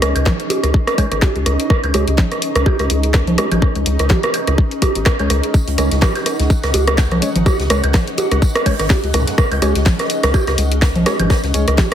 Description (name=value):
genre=minimal techno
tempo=125 BPM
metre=4/4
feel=swing 56% on 16ths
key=unclear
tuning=A4 = 443 Hz
part: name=percussive organ stab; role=stabs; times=0.0-11.7 s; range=G#3 to C#5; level=-26 LUFS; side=left 2 dB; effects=chorus, ping-pong delay
part: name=rubbery square bass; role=bass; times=0.0-11.9 s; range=G#1 to C#2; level=-18 LUFS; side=equal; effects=sidechain pumping
part: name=garage drum kit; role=drums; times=0.0-11.9 s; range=hi-hat, snare drum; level=-22 LUFS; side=left 1 dB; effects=none
part: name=electronic rim click, claves, congas and bongos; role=percussion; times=0.0-11.9 s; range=none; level=-18 LUFS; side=right 2 dB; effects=none
part: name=bubbling stepped-filter texture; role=texture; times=0.0-11.9 s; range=D#4 to F#5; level=-30 LUFS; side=right 3 dB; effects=chorus, built-in reverb, sidechain pumping
part: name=granular cloud pad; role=texture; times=0.0-11.9 s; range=C#4 to C#6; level=-25 LUFS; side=left 1 dB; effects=built-in reverb, sidechain pumping
part: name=electronic kick drum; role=drums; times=0.3-11.9 s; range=none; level=-14 LUFS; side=equal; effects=none
part: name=street-band drum kit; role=drums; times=5.5-11.9 s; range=hi-hat, snare drum, tambourine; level=-32 LUFS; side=right 1 dB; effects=high-pass filter on hats, high-pass filter on snare, high-pass filter on perc, high-pass filter on room
part: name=zap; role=sound effects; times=9.1-9.3 s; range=none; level=-28 LUFS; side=left 1 dB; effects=none
room=light reverb, digital ambience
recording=heavily compressed radio sound, multiband compression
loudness=-13 LUFS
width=side -10 dB against mid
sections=0.0-11.9 A section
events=filter sweep on synth stab 0.0-11.9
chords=0.0 C#5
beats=0.26 0.74 1.22 | 1.70 2.18 2.66 3.14 | 3.62 4.10 4.58 5.06 | 5.54 6.02 6.50 6.98 | 7.46 7.94 8.42 8.90 | 9.38 9.86 10.34 10.82 | 11.30 11.78